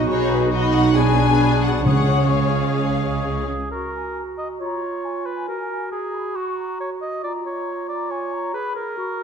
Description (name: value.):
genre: classical, dramatic, fast romantic movement for symphony orchestra.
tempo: 137 BPM.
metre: 4/4.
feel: rubato.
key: F# major.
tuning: A4 = 440 Hz.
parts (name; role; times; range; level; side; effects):
warm studio violin section; melody; 0.0-3.5 s; B4 to G#5; -25 LUFS; left 7 dB; none.
mellow large flute ensemble; second line; 0.0-9.2 s; G#5 to C#6; -31 LUFS; left 5 dB; none.
mellow oboe; second line; 0.0-9.2 s; F#4 to D#5; -29 LUFS; equal; none.
warm clarinet; second line; 0.0-9.2 s; C#4 to Ab4; -28 LUFS; right 1 dB; none.
warm symphonic violin section; second line; 0.0-3.4 s; F#4 to C#5; -28 LUFS; left 6 dB; none.
mellow French horn section; sustained chords; 0.0-3.4 s; F#3 to D#4; -26 LUFS; left 3 dB; none.
clear symphonic double bass section; bass; 0.0-3.5 s; B1 to C#2; -25 LUFS; right 5 dB; none.
rich symphonic cello section; bass; 0.0-3.5 s; B2 to C#3; -23 LUFS; right 4 dB; none.
rich symphonic viola section; accompaniment; 0.1-3.5 s; C#4 to G#4; -25 LUFS; right 2 dB; none.
timpani; percussion; 1.9-2.5 s; C#3; -22 LUFS; left 1 dB; none.
room: wet concert hall reverb, RT60 1.7 s.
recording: dark, warm production.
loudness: -19 LUFS.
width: side -6 dB against mid.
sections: 0.0-3.7 A section; 3.7-9.2 B section.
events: none.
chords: 0.0 B; 1.0 G#m7b5/B; 1.9 C#; 3.7 F#; 4.6 C#/E#; 5.5 F#; 7.2 Fdim.